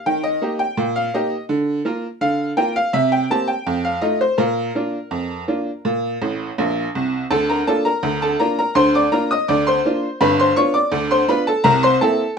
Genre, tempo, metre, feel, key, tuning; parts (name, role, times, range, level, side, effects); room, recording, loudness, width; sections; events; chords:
ragtime piano; 83 BPM; 2/4; straight; Bb major; A4 = 439 Hz
tack piano; solo; 0.0-12.4 s; G1 to Eb6; -17 LUFS; equal
moderate small room reverb, RT60 0.5 s; minimal, uncompressed stereo recording; -17 LUFS; side -6 dB against mid
0.0-7.3 A section; 7.3-12.4 B section
honky-tonk piano fill 6.2-7.3
0.0 Eb; 1.5 Bb/D; 2.9 C5; 3.7 F7; 4.4 Bb; 7.3 Bb/D; 10.2 G7; 11.6 C7